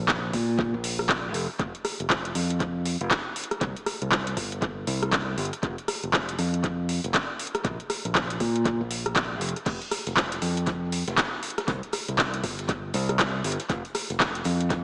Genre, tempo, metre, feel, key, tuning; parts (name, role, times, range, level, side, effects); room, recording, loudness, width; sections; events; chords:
deep house; 119 BPM; 4/4; swing 61% on 16ths; A4 = 440 Hz
modern bright fingered electric bass; bass; 0.0-14.8 s; F1 to Bb2; -28 LUFS; equal; sidechain pumping
deep house drum kit; drums; 0.1-14.8 s; crash cymbal, handclaps, hi-hat, rim click; -26 LUFS; equal; overdrive, tape echo
electronic kick drum; drums; 0.1-14.8 s; -31 LUFS; equal
open jazz drum kit; drums; 9.7-14.8 s; hi-hat, snare drum; -42 LUFS; equal
moderate echo chamber reverb, RT60 1.7 s; echo-heavy mix, small speaker sound; -24 LUFS; side -28 dB against mid
0.0-14.8 A section